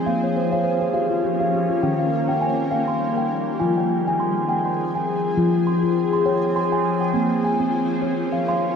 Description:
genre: world meditative, meditative tuned percussion.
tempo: 102 BPM.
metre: 3/4.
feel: swing 56% on 16ths.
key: F minor.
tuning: A4 = 435 Hz.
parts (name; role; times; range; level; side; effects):
shimmering ambient pad; sustained chords; 0.0-8.8 s; Eb3 to Ab4; -24 LUFS; left 2 dB; chorus, built-in reverb, phaser, shimmer reverb.
steel tongue drum; arpeggios; 0.1-8.8 s; Eb3 to C6; -20 LUFS; equal; shimmer reverb.
room: wet church reverb, RT60 3.3 s.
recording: dark, warm production.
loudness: -19 LUFS.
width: side -6 dB against mid.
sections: 0.0-5.4 A section; 5.4-8.8 B section.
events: steel tongue drum fill 0.1-1.8.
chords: 0.1 Bbm; 1.8 Eb; 3.6 Fm; 7.1 Bbm.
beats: | 0.06 0.66 1.25 | 1.84 2.43 3.02 | 3.61 4.20 4.79 | 5.38 5.96 6.55 | 7.14 7.73 8.32.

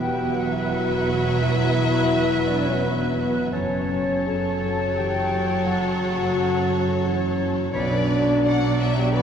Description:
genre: cinematic, emotional film score for orchestra.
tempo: 86 BPM.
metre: 3/4.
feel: rubato.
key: E dorian.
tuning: A4 = 436 Hz.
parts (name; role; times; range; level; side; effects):
warm studio violin section; melody; 0.0-9.2 s; C#5 to F#5; -32 LUFS; left 4 dB; none.
bright large flute ensemble; second line; 0.0-9.2 s; B4 to B5; -31 LUFS; left 1 dB; none.
warm clarinet; second line; 0.0-8.0 s; B4 to C#5; -32 LUFS; right 3 dB; none.
warm oboe; second line; 0.0-8.0 s; F#5 to B5; -35 LUFS; right 1 dB; none.
warm symphonic violin section; second line; 0.0-9.2 s; A4 to D5; -33 LUFS; equal; none.
warm concert grand piano; accompaniment; 0.0-9.2 s; B1 to F#4; -29 LUFS; left 1 dB; none.
warm symphonic viola section; accompaniment; 0.0-9.2 s; F#3; -32 LUFS; equal; none.
mellow French horn section; sustained chords; 0.0-9.2 s; B3 to B4; -25 LUFS; left 2 dB; none.
warm symphonic cello section; bass; 0.0-9.2 s; E2 to B2; -29 LUFS; right 4 dB; none.
warm symphonic double bass section; bass; 0.0-9.2 s; E1 to B1; -28 LUFS; right 3 dB; none.
room: wet church reverb, RT60 3.6 s.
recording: recorded in a church or concert hall.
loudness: -20 LUFS.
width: side -8 dB against mid.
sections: 0.0-9.2 A section.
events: none.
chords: 0.0 Esus2; 3.5 F#m; 7.7 Bm.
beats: 0.00 0.71 | 1.41 2.12 2.83 | 3.54 4.28 4.98 | 5.67 6.36 7.05 | 7.74 8.44 9.13.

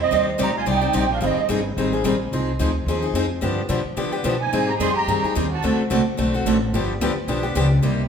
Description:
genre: acoustic string swing (jazz manouche).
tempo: 218 BPM.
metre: 4/4.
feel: swing 56% on 8ths.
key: C minor.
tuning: A4 = 441 Hz.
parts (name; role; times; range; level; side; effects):
musette accordion; melody; 0.0-1.5, 4.4-5.8 s; Eb5 to C6; -23 LUFS; right 5 dB; none.
clear violin; second line; 0.0-1.5, 4.4-5.8 s; C4 to Ab4; -30 LUFS; right 4 dB; none.
upright bass; bass; 0.0-8.1 s; G1 to D3; -25 LUFS; equal; none.
picked steel-string acoustic guitar; accompaniment; 0.1-8.0 s; C3 to D5; -23 LUFS; left 4 dB; none.
picked steel-string acoustic guitar; accompaniment; 0.1-8.0 s; C3 to D5; -26 LUFS; right 5 dB; none.
room: wet large studio reverb, RT60 1.3 s.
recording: band playing live in one room.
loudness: -19 LUFS.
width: side -7 dB against mid.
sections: 0.1-8.1 A section.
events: none.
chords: 0.1 Cmadd9; 1.2 Abmaj7; 2.3 Fm7; 3.4 G7; 4.5 Abmaj7; 5.6 D7; 6.7 G7.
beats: | 0.12 0.39 0.67 0.94 | 1.22 1.50 1.77 2.05 | 2.32 2.60 2.87 3.15 | 3.42 3.70 3.98 4.25 | 4.53 4.80 5.08 5.35 | 5.63 5.90 6.18 6.46 | 6.73 7.01 7.28 7.56 | 7.83.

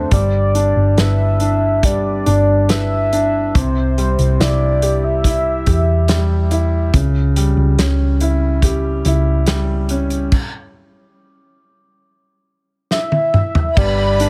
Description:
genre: pop ballad.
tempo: 70 BPM.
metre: 4/4.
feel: straight.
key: G major.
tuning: A4 = 440 Hz.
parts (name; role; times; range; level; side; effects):
warm velvety synth lead; melody; 0.0-6.5, 12.9-14.3 s; C5 to E5; -21 LUFS; equal; chorus.
felt-muted upright piano; accompaniment; 0.0-14.3 s; C3 to B4; -23 LUFS; equal; none.
hollow-body short-scale picked electric bass; bass; 0.0-14.3 s; G1 to E2; -19 LUFS; equal; none.
loose indie drum kit; drums; 0.1-14.3 s; crash cymbal, hi-hat, kick drum, snare drum, toms; -20 LUFS; equal; none.
warm symphonic violin section; second line; 13.8-14.3 s; B4 to B5; -26 LUFS; equal; none.
room: small room ambience.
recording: none.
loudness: -16 LUFS.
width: mono.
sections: 0.0-13.8 A section.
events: stop 10.3-13.8; drum fill 12.9-13.8.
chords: 0.1 G6; 3.5 C; 6.9 C#dim; 10.3 N.C.; 13.8 G.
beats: | 0.12 0.98 1.84 2.70 | 3.55 4.40 5.25 6.09 | 6.94 7.78 8.63 9.47 | 10.32 11.17 12.03 12.90 | 13.76.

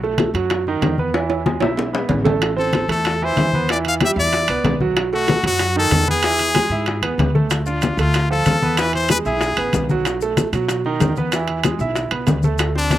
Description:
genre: latin, salsa.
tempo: 189 BPM.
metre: 4/4.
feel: straight.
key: unclear.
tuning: A4 = 438 Hz.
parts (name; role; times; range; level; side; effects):
bright concert grand piano; accompaniment; 0.0-13.0 s; D#3 to E5; -22 LUFS; right 5 dB; slapback echo.
upright bass; bass; 0.0-13.0 s; A1 to B2; -24 LUFS; equal; none.
bongos; percussion; 0.0-13.0 s; none; -25 LUFS; left 5 dB; slapback echo.
congas; percussion; 0.0-13.0 s; none; -22 LUFS; left 2 dB; none.
timbales; percussion; 0.2-13.0 s; none; -25 LUFS; right 6 dB; none.
brilliant trumpet; melody; 2.6-9.9, 12.8-13.0 s; D4 to F5; -20 LUFS; left 2 dB; none.
maracas; percussion; 7.5-13.0 s; none; -35 LUFS; left 11 dB; none.
room: little or no reverb.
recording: recorded outdoors, with no room sound.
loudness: -16 LUFS.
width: side -13 dB against mid.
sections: 0.0-13.0 A section.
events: drum fill 1.1-2.4.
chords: 0.0 B7; 1.1 E; 2.4 Am; 3.7 Em7; 5.0 B7; 6.2 E7; 7.5 Dm; 8.8 E; 10.0 B7; 11.3 E.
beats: 0.19 0.51 0.82 | 1.14 1.46 1.78 2.10 | 2.42 2.73 3.05 3.37 | 3.69 4.01 4.33 4.64 | 4.96 5.28 5.60 5.92 | 6.23 6.55 6.87 7.19 | 7.50 7.82 8.14 8.46 | 8.78 9.10 9.41 9.73 | 10.05 10.37 10.68 11.00 | 11.32 11.64 11.96 12.27 | 12.59 12.91.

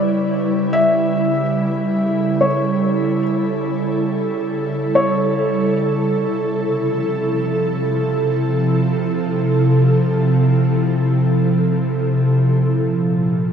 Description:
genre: ambient.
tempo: free time.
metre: none.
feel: none.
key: unclear.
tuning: A4 = 439 Hz.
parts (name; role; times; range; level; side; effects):
felt-muted upright piano; melody; 0.0-5.8 s; C#5 to E5; -21 LUFS; left 2 dB; diffuse ambient delay.
ethereal airy pad; sustained chords; 0.0-13.5 s; A#2 to B4; -16 LUFS; right 1 dB; ensemble chorus, built-in reverb.
room: wet huge ambient reverb, RT60 8.1 s.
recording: none.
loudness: -16 LUFS.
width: side -7 dB against mid.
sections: 0.0-13.5 A section.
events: none.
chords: 0.0 A7; 5.8 Fmaj7; 12.6 N.C..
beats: free time.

